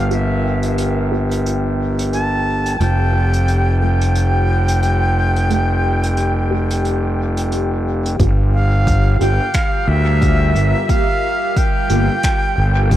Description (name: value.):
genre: ambient dub.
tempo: 89 BPM.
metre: 4/4.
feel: swing 58% on 16ths.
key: G dorian.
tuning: A4 = 440 Hz.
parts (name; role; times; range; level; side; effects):
bright reedy silver concert flute; melody; 0.0-13.0 s; E5 to A5; -22 LUFS; equal; vintage 12-bit sampler grit, dub echo.
deep dark ambient pad; sustained chords; 0.0-13.0 s; G3 to G5; -25 LUFS; equal; chorus, built-in reverb.
fuzz fingered electric bass; bass; 0.0-13.0 s; F1 to D2; -16 LUFS; equal; overdrive.
filtered dub chord stab; stabs; 0.1-12.1 s; A3 to G4; -25 LUFS; right 1 dB; phaser, wide subtle chorus, dub echo.
vintage brush drum kit; drums; 0.1-13.0 s; finger snaps, hi-hat; -29 LUFS; right 1 dB; dub echo.
electronic kick drum; drums; 8.2-13.0 s; none; -18 LUFS; equal; overdrive.
room: light reverb, small room ambience.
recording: none.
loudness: -14 LUFS.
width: side -13 dB against mid.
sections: 0.0-8.2 A section; 8.2-13.0 B section.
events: none.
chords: 0.0 Gm7; 2.8 Fsus2; 8.2 Gm7.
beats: | 0.11 0.78 1.45 2.13 | 2.80 3.48 4.15 4.83 | 5.50 6.17 6.85 7.52 | 8.20 8.87 9.54 10.22 | 10.89 11.57 12.24 12.91.